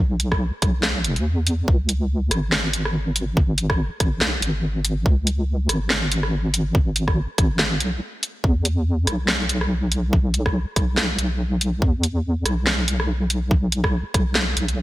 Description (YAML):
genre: deep dubstep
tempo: 142 BPM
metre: 4/4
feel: swing 56% on 16ths, half-time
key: unclear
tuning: A4 = 441 Hz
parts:
  - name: deep soft wobble bass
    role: bass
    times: 0.0-14.8 s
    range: E1 to E2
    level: -22 LUFS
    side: equal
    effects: chorus
  - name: garage drum kit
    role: drums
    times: 0.2-14.8 s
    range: hi-hat, rim click, snare drum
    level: -23 LUFS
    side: equal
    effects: none
  - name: electronic kick drum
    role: drums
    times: 0.3-14.2 s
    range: none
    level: -20 LUFS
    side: equal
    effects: none
room: light reverb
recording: bright 1980s-style digital production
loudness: -19 LUFS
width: side -16 dB against mid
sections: 0.0-14.8 A section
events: none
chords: none